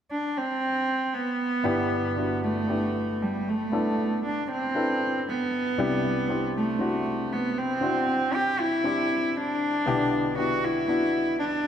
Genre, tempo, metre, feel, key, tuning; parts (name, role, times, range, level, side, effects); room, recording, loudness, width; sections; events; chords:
pop ballad; 58 BPM; 4/4; straight; G major; A4 = 441 Hz
warm cello; melody; 0.1-11.7 s; G3 to G4; -26 LUFS; right 1 dB
warm baby grand piano; accompaniment; 1.6-11.7 s; G1 to B4; -28 LUFS; left 2 dB
wet scoring stage reverb, RT60 1.7 s; -24 LUFS; side -9 dB against mid
0.0-1.6 A section; 1.6-11.7 B section
0.0 N.C.; 1.6 G6; 5.8 Cadd9; 9.9 G6/B